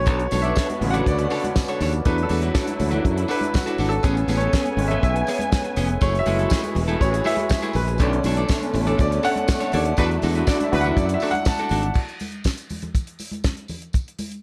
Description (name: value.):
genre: disco.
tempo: 121 BPM.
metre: 4/4.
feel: straight.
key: B dorian.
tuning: A4 = 440 Hz.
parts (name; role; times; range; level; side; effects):
bright concert grand piano; accompaniment; 0.0-12.0 s; C#3 to A5; -28 LUFS; equal; none.
dark studio string section; sustained chords; 0.0-11.9 s; B2 to G#5; -30 LUFS; equal; none.
modern bright fingered electric bass; bass; 0.0-11.9 s; E1 to F#2; -25 LUFS; equal; none.
electric guitar at the edge of break-up; accompaniment; 0.1-11.9 s; A3 to D5; -31 LUFS; equal; none.
damped 70s drum kit; drums; 0.1-14.4 s; crash cymbal, hi-hat, kick drum, snare drum; -26 LUFS; equal; none.
congas; percussion; 0.1-14.3 s; none; -36 LUFS; equal; none.
tambourine; percussion; 0.1-14.3 s; none; -42 LUFS; equal; none.
warm horn section; stabs; 10.0-10.9 s; B3 to B4; -30 LUFS; equal; none.
room: light reverb, small room ambience.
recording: dark, warm production.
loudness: -22 LUFS.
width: mono.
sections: 0.0-12.0 A section; 12.0-14.4 B section.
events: grand piano solo 0.0-12.0; band accent 10.0-12.0.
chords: 0.1 Bm9; 2.1 E9sus4; 4.0 Amaj9; 6.0 F#m9; 8.0 Bm9; 10.0 E9sus4; 12.0 N.C..